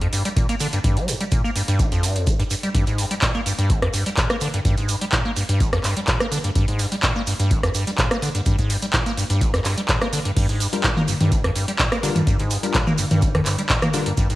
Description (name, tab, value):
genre	acid house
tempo	126 BPM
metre	4/4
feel	straight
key	G phrygian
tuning	A4 = 440 Hz
part	acid bass, square	riff	0.0-14.4 s	G1 to Bb3	-22 LUFS	equal	tube saturation, wide subtle chorus, cassette tape, analog delay
part	booming analog drum machine	drums	0.0-14.4 s	crash cymbal, handclaps, hi-hat, rim click, toms	-23 LUFS	equal	cassette tape
part	maracas	percussion	0.1-14.4 s	none	-33 LUFS	right 9 dB	none
part	electronic kick drum	drums	0.4-14.3 s	none	-22 LUFS	equal	cassette tape
part	bell-like tine electric piano	stabs	10.7-14.1 s	G3 to Bb4	-29 LUFS	left 7 dB	medium stereo tremolo, cassette tape, analog delay
room	light reverb, digital ambience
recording	home recording on cassette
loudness	-18 LUFS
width	side -17 dB against mid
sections	0.0-14.4 A section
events	none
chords	0.0 Gm